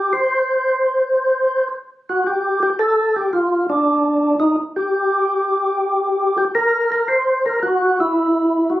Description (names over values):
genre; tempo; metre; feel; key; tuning
jazz; 112 BPM; 4/4; swing 69% on 8ths; C mixolydian; A4 = 440 Hz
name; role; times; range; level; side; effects
percussive tonewheel organ; solo; 0.0-8.8 s; D4 to C5; -16 LUFS; equal; overdrive, chorus vibrato, slow rotary speaker
room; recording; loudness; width
wet studio reverb, RT60 0.8 s; recorded on a phone in the room, club reverb, compression; -16 LUFS; side -15 dB against mid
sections
0.0-8.8 A section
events
none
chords
none